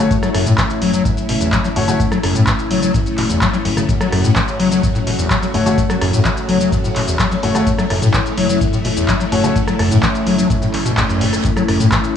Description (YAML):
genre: acid house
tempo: 127 BPM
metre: 4/4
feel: straight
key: F# minor pentatonic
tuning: A4 = 440 Hz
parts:
  - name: string machine, full ensemble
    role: sustained chords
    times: 0.0-12.2 s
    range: A3 to F#4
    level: -21 LUFS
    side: left 1 dB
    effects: phaser, ensemble chorus, sidechain pumping
  - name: overdriven acid bass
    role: riff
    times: 0.0-12.0 s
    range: E2 to F#3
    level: -18 LUFS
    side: left 2 dB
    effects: tube saturation, wide subtle chorus, cassette tape, tape echo
  - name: warm concert grand piano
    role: stabs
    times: 0.0-2.0, 5.5-9.5 s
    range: A3 to C#5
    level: -21 LUFS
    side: left 3 dB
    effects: tape echo
  - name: round analog bass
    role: bass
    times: 0.0-11.9 s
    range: F#1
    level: -24 LUFS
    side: left 1 dB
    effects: tube saturation, sidechain pumping
  - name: electro analog drum machine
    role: drums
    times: 0.1-12.1 s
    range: handclaps, hi-hat, rim click, shaker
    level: -22 LUFS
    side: equal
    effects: none
  - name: electronic kick drum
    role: drums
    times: 0.1-12.0 s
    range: none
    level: -20 LUFS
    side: equal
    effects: none
  - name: reverse cymbal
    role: sound effects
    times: 10.7-11.4 s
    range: none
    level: -28 LUFS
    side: right 4 dB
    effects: none
room: light reverb, digital ambience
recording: dry, gritty hardware recording, studio ambience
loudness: -13 LUFS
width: side -8 dB against mid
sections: 0.0-12.2 A section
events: reverse cymbal 10.7-11.4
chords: 0.0 F#m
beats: | 0.11 0.58 1.05 1.52 | 2.00 2.47 2.94 3.42 | 3.89 4.36 4.83 5.30 | 5.78 6.25 6.72 7.20 | 7.67 8.14 8.61 9.08 | 9.56 10.03 10.50 10.97 | 11.45 11.92